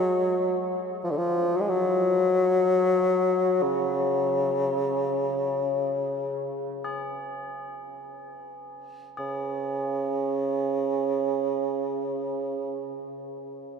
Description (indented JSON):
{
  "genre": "world meditative, free-time meditation music",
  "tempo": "free time",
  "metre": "none",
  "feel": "none",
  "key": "C# major",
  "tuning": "A4 = 436 Hz",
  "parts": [
    { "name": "warm bassoon", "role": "melody", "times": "0.0-13.1 s", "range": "C#3 to G#3", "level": "-24 LUFS", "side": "equal", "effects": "tape echo" },
    { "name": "tubular bells", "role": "texture", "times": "0.0-13.1 s", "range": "G#4 to C#5", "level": "-39 LUFS", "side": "right 2 dB", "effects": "none" }
  ],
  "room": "wet cathedral reverb, RT60 6.6 s",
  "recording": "in a vast, echoing space",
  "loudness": "-24 LUFS",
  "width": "side -6 dB against mid",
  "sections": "0.0-9.2 A section; 9.2-12.8 B section",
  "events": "none",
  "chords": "none"
}